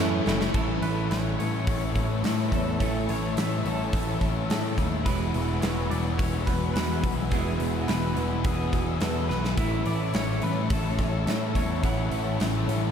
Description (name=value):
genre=rock, shoegaze and dream pop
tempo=106 BPM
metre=4/4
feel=straight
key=A major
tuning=A4 = 440 Hz
part: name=electric guitar at the edge of break-up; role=melody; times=0.0-12.9 s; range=G#4 to F#5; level=-37 LUFS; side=equal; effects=analog chorus, ping-pong delay
part: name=airy breathy pad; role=sustained chords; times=0.0-12.9 s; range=A4 to E6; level=-35 LUFS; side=equal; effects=chorus
part: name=picked twelve-string acoustic guitar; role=arpeggios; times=0.0-12.9 s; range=E3 to E4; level=-39 LUFS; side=right 5 dB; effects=none
part: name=biting overdriven guitar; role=riff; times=0.0-12.9 s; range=E2 to E4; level=-31 LUFS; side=left 8 dB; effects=lush chorus
part: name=biting overdriven guitar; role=riff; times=0.0-0.5 s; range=A2 to A3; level=-36 LUFS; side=equal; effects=none
part: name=overdriven semi-hollow guitar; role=riff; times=0.0-12.9 s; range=E2 to E4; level=-34 LUFS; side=right 9 dB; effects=reverse reverb
part: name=growling picked electric bass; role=bass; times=0.0-12.9 s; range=E1 to A2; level=-29 LUFS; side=equal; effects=overdrive
part: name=big rock drum kit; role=drums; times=0.3-12.8 s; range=crash cymbal, hi-hat, kick drum, snare drum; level=-29 LUFS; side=equal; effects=none
room=moderate huge ambient reverb, RT60 3.8 s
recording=dreamy mix soaked in reverb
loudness=-24 LUFS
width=side -8 dB against mid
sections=0.5-12.9 A section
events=drum fill 0.0-0.5, 9.3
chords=0.0 Amaj7; 0.5 A; 5.1 Eadd9; 9.6 A